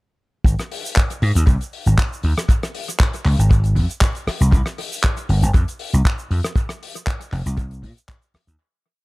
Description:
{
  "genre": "nu-disco, nu disco",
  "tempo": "118 BPM",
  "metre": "4/4",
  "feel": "straight",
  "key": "Ab major",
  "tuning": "A4 = 440 Hz",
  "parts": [
    { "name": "vintage slap bass", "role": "bass", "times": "0.4-8.6 s", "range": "F1 to Bb2", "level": "-16 LUFS", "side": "equal", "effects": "sidechain pumping" },
    { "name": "kick drum", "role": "drums", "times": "0.4-8.2 s", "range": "none", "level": "-16 LUFS", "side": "equal", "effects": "none" },
    { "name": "damped 70s drum kit", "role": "drums", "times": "0.5-8.6 s", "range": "handclaps, hi-hat, rim click, shaker", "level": "-26 LUFS", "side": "equal", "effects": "analog delay" }
  ],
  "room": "little or no reverb",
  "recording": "echo-heavy mix",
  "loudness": "-17 LUFS",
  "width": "side -24 dB against mid",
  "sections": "0.5-8.6 drop",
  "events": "drop 0.5-8.6; fade-out 5.9-8.6",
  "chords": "none",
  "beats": "| 0.46 0.97 1.48 1.98 | 2.49 3.00 3.51 4.02 | 4.53 5.03 5.54 6.05 | 6.56 7.07 7.58 8.09"
}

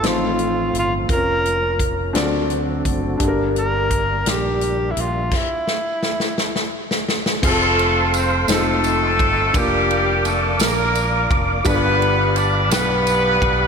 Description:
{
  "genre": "slow gospel",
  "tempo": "57 BPM (dotted quarters)",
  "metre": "6/8",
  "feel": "straight",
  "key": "F major",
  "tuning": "A4 = 440 Hz",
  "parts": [
    { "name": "breathy tenor saxophone", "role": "melody", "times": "0.0-6.8 s", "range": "E4 to Bb4", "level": "-22 LUFS", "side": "equal", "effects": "slapback echo" },
    { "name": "warm concert grand piano", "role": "accompaniment", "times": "0.0-13.7 s", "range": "G2 to D5", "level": "-23 LUFS", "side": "left 2 dB", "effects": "slapback echo" },
    { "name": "tonewheel organ", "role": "sustained chords", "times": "0.0-13.7 s", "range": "D3 to D6", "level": "-25 LUFS", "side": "right 2 dB", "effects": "slow rotary speaker, chorus vibrato" },
    { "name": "modern bright fingered electric bass", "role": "bass", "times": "0.0-13.7 s", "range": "F1 to D2", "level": "-24 LUFS", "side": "equal", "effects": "none" },
    { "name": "natural country drum kit", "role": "drums", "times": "0.0-13.6 s", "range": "crash cymbal, hi-hat, kick drum, ride cymbal, snare drum", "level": "-23 LUFS", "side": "equal", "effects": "none" },
    { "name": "tambourine", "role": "percussion", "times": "7.4-13.4 s", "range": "none", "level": "-32 LUFS", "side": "right 8 dB", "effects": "none" },
    { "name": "warm horn section", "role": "melody", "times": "7.5-13.7 s", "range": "G3 to D5", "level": "-18 LUFS", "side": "equal", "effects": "slapback echo" }
  ],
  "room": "moderate lush hall reverb, RT60 2.3 s",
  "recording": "big arena sound",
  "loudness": "-16 LUFS",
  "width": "side -6 dB against mid",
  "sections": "0.0-7.4 A section; 7.4-13.7 B section",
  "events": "drum fill 5.3-7.4",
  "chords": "0.0 F7/A; 1.1 Bbm/F; 2.1 D7; 3.2 Gm; 5.3 N.C.; 7.4 F; 8.5 F7; 9.5 Bb/F; 11.7 G7",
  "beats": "0.03 | 1.09 2.15 | 3.20 4.26 | 5.32 6.37 | 7.43 8.49 | 9.54 10.60 | 11.66 12.71"
}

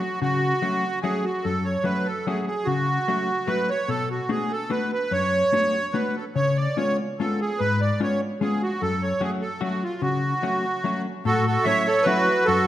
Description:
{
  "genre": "musette waltz",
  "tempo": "147 BPM",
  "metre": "3/4",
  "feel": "straight",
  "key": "F# harmonic minor",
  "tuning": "A4 = 442 Hz",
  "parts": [
    { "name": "accordion", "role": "melody", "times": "0.0-12.7 s", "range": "E#4 to E5", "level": "-23 LUFS", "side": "right 2 dB", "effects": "light tremolo tuning" },
    { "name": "hollow-body jazz guitar", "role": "accompaniment", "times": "0.0-12.7 s", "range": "F#2 to F#4", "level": "-26 LUFS", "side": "left 3 dB", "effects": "none" }
  ],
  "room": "wet recital hall reverb, RT60 1.5 s",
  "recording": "none",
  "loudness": "-21 LUFS",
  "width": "side -12 dB against mid",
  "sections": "0.0-1.4 A section; 1.4-11.3 A section; 11.3-12.7 B section",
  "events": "none",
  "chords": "0.0 F#m; 3.9 Bm7; 6.4 C#7; 8.8 F#m; 11.3 A6",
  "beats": "| 0.22 0.62 1.03 | 1.45 1.86 2.27 | 2.67 3.08 3.48 | 3.89 4.30 4.71 | 5.12 5.52 5.94 | 6.35 6.76 7.17 | 7.58 7.99 8.40 | 8.80 9.21 9.61 | 10.02 10.43 10.84 | 11.26 11.66 12.07 | 12.47"
}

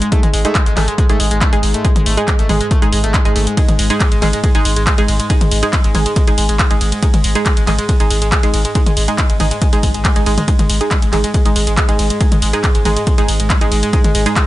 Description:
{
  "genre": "driving peak-time techno",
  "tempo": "139 BPM",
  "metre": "4/4",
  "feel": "straight",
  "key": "unclear",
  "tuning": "A4 = 441 Hz",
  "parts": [
    { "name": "overdriven synth lead", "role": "riff", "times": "0.0-14.4 s", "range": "G#3 to A3", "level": "-22 LUFS", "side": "equal", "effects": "distortion, tube saturation, sidechain pumping, dub echo" },
    { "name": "analog drone", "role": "drone", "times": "0.0-14.5 s", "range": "G#2 to G#3", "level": "-25 LUFS", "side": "left 1 dB", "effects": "chorus, sidechain pumping" },
    { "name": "punchy analog drum machine", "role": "drums", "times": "0.0-14.5 s", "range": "handclaps, hi-hat, ride cymbal, toms", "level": "-20 LUFS", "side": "equal", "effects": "none" },
    { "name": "filtered dub chord stab", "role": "stabs", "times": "0.1-14.4 s", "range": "G#3 to G#4", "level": "-21 LUFS", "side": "right 3 dB", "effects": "chorus, sidechain pumping, ping-pong delay" },
    { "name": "electronic kick drum", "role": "drums", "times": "0.1-14.5 s", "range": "none", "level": "-14 LUFS", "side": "equal", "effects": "none" },
    { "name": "saturated sub bass", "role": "bass", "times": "0.2-14.3 s", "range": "G#1", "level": "-17 LUFS", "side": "equal", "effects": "overdrive, sidechain pumping, low-pass filter" },
    { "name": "swell", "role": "sound effects", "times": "9.9-10.5 s", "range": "none", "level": "-30 LUFS", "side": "equal", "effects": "none" }
  ],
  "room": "light reverb, digital ambience",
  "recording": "nothing above 11.0 kHz",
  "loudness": "-12 LUFS",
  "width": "side -16 dB against mid",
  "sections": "0.0-14.5 A section",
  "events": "swell 9.9-10.5",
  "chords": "0.0 G#5",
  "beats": "| 0.12 0.55 0.98 1.41 | 1.85 2.28 2.71 3.14 | 3.57 4.00 4.44 4.87 | 5.30 5.73 6.16 6.59 | 7.03 7.46 7.89 8.32 | 8.75 9.18 9.62 10.05 | 10.48 10.91 11.34 11.77 | 12.21 12.64 13.07 13.50 | 13.93 14.36"
}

